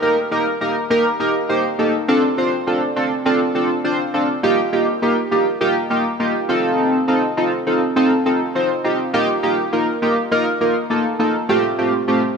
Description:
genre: pop.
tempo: 102 BPM.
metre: 4/4.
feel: straight.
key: unclear.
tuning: A4 = 440 Hz.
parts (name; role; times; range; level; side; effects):
chorused polysynth; solo; 0.0-12.2 s; A3 to C5; -16 LUFS; equal; tape echo.
room: moderate lush hall reverb, RT60 2.6 s.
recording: worn, warbling old tape, cassette tape, warbly pitch drift, small room ambience.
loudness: -16 LUFS.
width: side -5 dB against mid.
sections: 0.0-4.4 A section; 4.4-12.4 B section.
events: none.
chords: 0.0 Eb; 2.1 Dm7; 4.4 Ebadd9; 6.5 F7; 9.1 Ebadd9; 11.5 Fadd9.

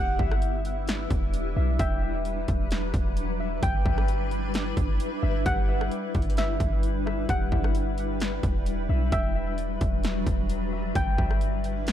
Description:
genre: hip hop, atmospheric cloud-rap.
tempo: 131 BPM.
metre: 4/4.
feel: half-time.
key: E minor.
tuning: A4 = 439 Hz.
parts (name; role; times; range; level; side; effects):
soft round pluck; melody; 0.0-11.4 s; E5 to G5; -34 LUFS; equal; chorus, low-pass filter, ping-pong delay.
granular cloud pad; sustained chords; 0.0-11.9 s; F#3 to B4; -31 LUFS; left 1 dB; built-in reverb, sidechain pumping.
Celtic harp; arpeggios; 0.0-11.9 s; G4 to G5; -37 LUFS; left 9 dB; low-pass filter, ping-pong delay.
warm 808-style bass; bass; 0.0-11.9 s; E1 to B1; -28 LUFS; equal; none.
techno drum kit; drums; 0.2-11.9 s; hi-hat, kick drum, rim click, snare drum; -28 LUFS; equal; overdrive.
room: digital ambience.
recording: none.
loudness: -24 LUFS.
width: side -11 dB against mid.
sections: 0.0-11.9 A section.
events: none.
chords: 0.0 Em7; 3.6 G6; 7.3 Em7; 11.0 G6.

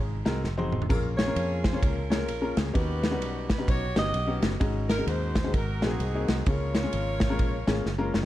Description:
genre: uptempo gospel.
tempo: 129 BPM.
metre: 4/4.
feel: swing 62% on 8ths.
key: Db major.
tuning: A4 = 440 Hz.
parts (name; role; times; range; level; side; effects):
warm saxophone section; melody; 0.0-8.2 s; C4 to Eb5; -33 LUFS; equal; none.
warm grand piano; accompaniment; 0.0-8.2 s; Ab2 to F#5; -32 LUFS; left 3 dB; none.
fingered electric bass; bass; 0.0-8.3 s; F1 to F2; -31 LUFS; equal; none.
modern studio drum kit; drums; 0.3-8.2 s; kick drum, ride cymbal, snare drum, splash cymbal, toms; -28 LUFS; equal; none.
room: small room reverb.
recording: dark, warm production.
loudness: -24 LUFS.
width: side -14 dB against mid.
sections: 0.0-8.3 A section.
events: drum fill 0.4-0.9, 7.9-8.3.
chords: 0.0 Ab9; 0.9 Bbm7; 2.8 Eb7alt; 4.6 Ab7sus4; 5.5 Ab9; 6.5 Db6.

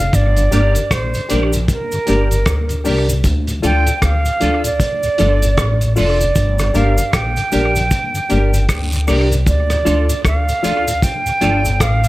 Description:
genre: roots reggae.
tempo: 77 BPM.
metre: 4/4.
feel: swing 60% on 16ths.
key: G minor.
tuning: A4 = 438 Hz.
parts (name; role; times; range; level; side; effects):
silver concert flute; melody; 0.0-12.1 s; Bb4 to G5; -19 LUFS; right 2 dB; tape echo, plate reverb.
mellow tonewheel organ; accompaniment; 0.0-12.1 s; D2 to D4; -24 LUFS; left 2 dB; chorus vibrato, slow rotary speaker, tape echo.
upright bass; bass; 0.0-12.1 s; F1 to D2; -16 LUFS; equal; none.
cloth-damped thuddy drum kit; drums; 0.1-12.1 s; hi-hat, kick drum, rim click; -21 LUFS; equal; tape echo.
cabasa and guiro; percussion; 0.1-12.1 s; none; -29 LUFS; equal; none.
clean electric guitar; accompaniment; 0.5-12.1 s; D4 to Bb4; -23 LUFS; right 3 dB; ensemble chorus, tape echo, plate reverb.
dark upright piano; stabs; 0.5-11.7 s; F4 to D5; -23 LUFS; left 4 dB; plate reverb.
room: light reverb.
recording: none.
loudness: -13 LUFS.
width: side -18 dB against mid.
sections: 0.0-12.1 A section.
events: none.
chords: 0.1 Gm; 3.2 Dm; 6.4 Gm; 9.5 Dm.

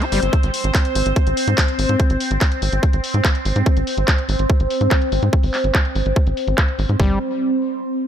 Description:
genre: psychedelic trance.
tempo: 144 BPM.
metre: 4/4.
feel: straight.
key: unclear.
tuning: A4 = 440 Hz.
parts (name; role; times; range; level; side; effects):
overtone-sweeping drone; sustained chords; 0.0-7.0 s; C4 to C5; -22 LUFS; equal; chorus, built-in reverb, phaser, sidechain pumping.
overdriven acid bass; riff; 0.0-0.2, 7.0-7.2 s; G3 to G4; -26 LUFS; left 1 dB; distortion, auto-pan, sidechain pumping, tape echo.
drum and bass drum kit; drums; 0.0-7.0 s; handclaps, hi-hat; -24 LUFS; equal; overdrive, low-pass filter on hats, low-pass filter on snare.
tight sequencer bass; bass; 0.1-7.2 s; G1 to Ab2; -19 LUFS; equal; none.
electronic kick drum; drums; 0.3-7.1 s; none; -17 LUFS; equal; overdrive.
room: digital ambience.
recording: none.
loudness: -16 LUFS.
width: side -9 dB against mid.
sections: 0.0-7.0 A section; 7.0-8.1 B section.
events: filter sweep on drum 0.0-7.0; filter sweep on analog synth bass 0.0-7.0.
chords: 0.3 Ab; 7.0 N.C..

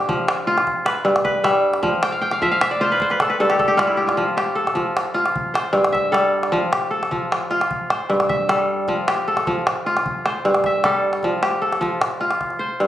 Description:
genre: west african traditional, West African string and xylophone music.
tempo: 102 BPM (dotted quarters).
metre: 12/8.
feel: straight.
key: F lydian.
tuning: A4 = 440 Hz.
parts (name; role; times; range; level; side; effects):
kora; arpeggios; 0.0-12.9 s; G2 to G5; -18 LUFS; equal; none.
calabash; percussion; 0.1-12.9 s; none; -24 LUFS; equal; none.
room: moderate recital hall reverb, RT60 1.4 s.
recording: recorded on a phone in the room, studio reverb, compression.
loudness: -17 LUFS.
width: side -12 dB against mid.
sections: 0.0-4.2 A section; 4.2-12.9 B section.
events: kora fill 2.0-4.2; drum fill 12.6.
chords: 0.0 Fsus2; 0.7 G; 1.8 Dm11/F; 3.0 N.C.; 4.2 F; 5.4 Am7; 6.5 F; 7.7 Am7; 8.9 F; 10.1 Am7; 11.2 F.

